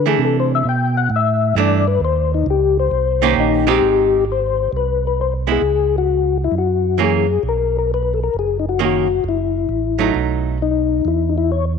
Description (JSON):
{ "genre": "soul jazz organ trio", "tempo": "132 BPM", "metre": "4/4", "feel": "swing 67% on 8ths", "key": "unclear", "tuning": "A4 = 438 Hz", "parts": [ { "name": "percussive tonewheel organ", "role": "melody", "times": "0.0-11.7 s", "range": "Eb4 to G5", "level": "-18 LUFS", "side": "left 10 dB", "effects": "slow rotary speaker, chorus vibrato, slapback echo" }, { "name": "mellow tonewheel organ", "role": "bass", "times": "0.0-11.8 s", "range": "F#1 to D3", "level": "-20 LUFS", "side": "right 3 dB", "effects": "chorus vibrato, slow rotary speaker" }, { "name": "archtop guitar, miked and amplified", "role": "accompaniment", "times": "0.1-10.6 s", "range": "Eb3 to G4", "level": "-19 LUFS", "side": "right 15 dB", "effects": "none" } ], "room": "light reverb, digital ambience", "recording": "1960s-style stereo with parts hard left and right", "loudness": "-15 LUFS", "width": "side -6 dB against mid", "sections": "0.0-3.8 A section; 3.8-11.8 B section", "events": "tonewheel organ solo 0.0-3.8", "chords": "0.2 C69; 2.0 Eb7; 3.8 Abmaj7; 5.6 Dbsus4; 6.5 Gb7; 7.4 Bmaj9; 9.2 Gbm7; 10.1 B7; 11.1 N.C.", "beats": "| 0.20 0.65 1.10 1.55 | 2.01 2.46 2.91 3.36 | 3.81 4.26 4.71 5.17 | 5.62 6.07 6.53 6.98 | 7.43 7.88 8.34 8.79 | 9.24 9.70 10.15 10.60 | 11.05 11.51" }